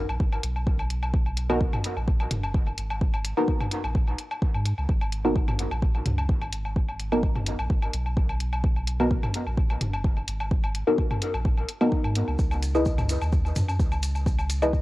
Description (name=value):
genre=dub techno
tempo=128 BPM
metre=4/4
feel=swing 53% on 16ths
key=G# minor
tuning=A4 = 436 Hz
part: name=pure sine sub bass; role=bass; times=0.0-14.8 s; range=F#1 to G#2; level=-28 LUFS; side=equal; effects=sidechain pumping
part: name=electronic woodblock and toms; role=percussion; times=0.1-14.7 s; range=none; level=-33 LUFS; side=left 1 dB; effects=overdrive, sidechain pumping on toms, cassette tape, sidechain pumping on perc, dub echo
part: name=electronic kick drum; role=drums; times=0.2-14.8 s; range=none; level=-25 LUFS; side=equal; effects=cassette tape
part: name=electronic hi-hat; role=drums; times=0.4-14.6 s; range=none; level=-33 LUFS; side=equal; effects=cassette tape
part: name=deep mellow chord stab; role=stabs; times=1.5-14.7 s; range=B3 to D#5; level=-27 LUFS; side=equal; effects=chorus, phaser, sidechain pumping, cassette tape, dub echo
part: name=maracas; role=percussion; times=12.4-14.8 s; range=none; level=-42 LUFS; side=equal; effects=none
room=digital ambience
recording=home recording on cassette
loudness=-23 LUFS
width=side -18 dB against mid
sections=0.0-14.8 A section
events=filter sweep on synth stab 0.0-14.8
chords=0.0 G#m9; 12.4 C#m9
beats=0.20 0.67 | 1.14 1.61 2.08 2.54 | 3.01 3.48 3.95 4.42 | 4.89 5.36 5.83 6.29 | 6.76 7.23 7.70 8.17 | 8.64 9.11 9.57 10.04 | 10.51 10.98 11.45 11.92 | 12.39 12.86 13.32 13.79 | 14.26 14.73